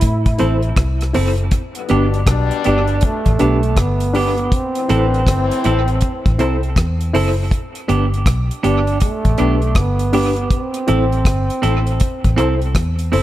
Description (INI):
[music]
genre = roots reggae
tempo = 80 BPM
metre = 4/4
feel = swing 63% on 16ths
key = unclear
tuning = A4 = 438 Hz
[part]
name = breathy trombone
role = melody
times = 0.0-12.7 s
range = A3 to E4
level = -22 LUFS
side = right 2 dB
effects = tape echo
[part]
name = vintage muted fingered electric bass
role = bass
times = 0.0-13.2 s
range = F#1 to A2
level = -17 LUFS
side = equal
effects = none
[part]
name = deep reggae drum kit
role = drums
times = 0.0-13.2 s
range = hi-hat, kick drum, rim click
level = -18 LUFS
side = equal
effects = none
[part]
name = clean electric guitar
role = accompaniment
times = 0.4-13.2 s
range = B3 to A4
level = -22 LUFS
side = right 4 dB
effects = tube saturation, spring reverb, tape echo
[part]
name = reed electric piano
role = stabs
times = 0.4-13.2 s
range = D4 to C5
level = -23 LUFS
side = left 3 dB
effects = fast tremolo
[part]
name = clear trombone section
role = second line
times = 1.8-6.4 s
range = G2 to B4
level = -25 LUFS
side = left 9 dB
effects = tape echo
[sound]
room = small room ambience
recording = echo-heavy mix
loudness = -14 LUFS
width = side -14 dB against mid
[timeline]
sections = 0.0-13.2 A section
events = none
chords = 0.0 Am; 1.5 G; 4.5 Am; 7.5 G; 10.5 Am